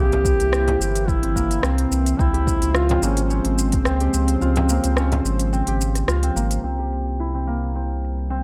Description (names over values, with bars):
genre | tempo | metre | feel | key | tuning
organic downtempo | 108 BPM | 4/4 | swing 54% on 16ths | C phrygian dominant | A4 = 442 Hz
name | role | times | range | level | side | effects
mellow duduk | melody | 0.0-6.1 s | C4 to G4 | -26 LUFS | equal | tape echo
warm analog pad | sustained chords | 0.0-8.4 s | C3 to C5 | -32 LUFS | equal | chorus, sidechain pumping
concert harp | arpeggios | 0.0-8.4 s | Bb3 to G4 | -29 LUFS | equal | low-pass filter, tape echo
warm sub bass | bass | 0.0-8.4 s | G1 to Db2 | -24 LUFS | equal | sidechain pumping
deep house drum kit | drums | 0.1-8.4 s | hi-hat, rim click, shaker | -29 LUFS | equal | low-pass filter on perc, low-pass filter on hats, low-pass filter on snare
frame drum | percussion | 0.1-5.2 s | none | -30 LUFS | equal | none
electronic kick drum | drums | 0.2-3.8 s | none | -24 LUFS | equal | none
room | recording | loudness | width
light reverb, digital ambience | none | -21 LUFS | mono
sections
0.0-6.6 A section; 6.6-8.4 B section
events
kick drops out 4.4-6.6; filter sweep on harp 6.6-8.4; filter sweep on analog synth pad 6.6-8.4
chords
0.0 C7; 2.2 Dbmaj7; 6.6 C7